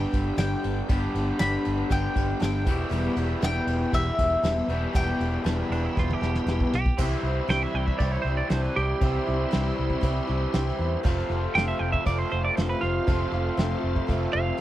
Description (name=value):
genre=folk rock and heartland rock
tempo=118 BPM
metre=4/4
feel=straight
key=unclear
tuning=A4 = 439 Hz
part: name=mandolin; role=melody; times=0.0-6.4 s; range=E5 to B5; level=-30 LUFS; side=left 1 dB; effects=tape echo
part: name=picked steel-string acoustic guitar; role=accompaniment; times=0.0-14.6 s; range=E2 to G4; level=-33 LUFS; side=left 3 dB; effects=none
part: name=warm upright piano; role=accompaniment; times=0.0-14.4 s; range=F4 to B5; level=-39 LUFS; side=right 3 dB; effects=none
part: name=tonewheel organ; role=sustained chords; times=0.0-14.6 s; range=B3 to C5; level=-38 LUFS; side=right 1 dB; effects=slow rotary speaker, chorus vibrato
part: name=raw garage guitar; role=riff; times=0.0-14.6 s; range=E2 to G4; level=-30 LUFS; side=equal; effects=overdrive
part: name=vintage muted fingered electric bass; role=bass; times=0.0-14.5 s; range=E1 to E2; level=-28 LUFS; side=equal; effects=none
part: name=soft brush drum kit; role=drums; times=0.1-14.2 s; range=crash cymbal, kick drum, snare drum, toms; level=-28 LUFS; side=equal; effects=none
part: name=twelve-string electric guitar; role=second line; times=5.7-14.6 s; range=D4 to G5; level=-29 LUFS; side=right 4 dB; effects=none
room=little or no reverb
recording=dry, close 1970s-style studio recording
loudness=-23 LUFS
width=side -14 dB against mid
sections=0.0-7.0 A section; 7.0-14.6 B section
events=drum fill 6.0-7.0; clean electric guitar solo 7.0-14.6; upright piano fill 10.3-11.0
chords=0.0 G; 2.7 Em; 7.0 C; 11.0 F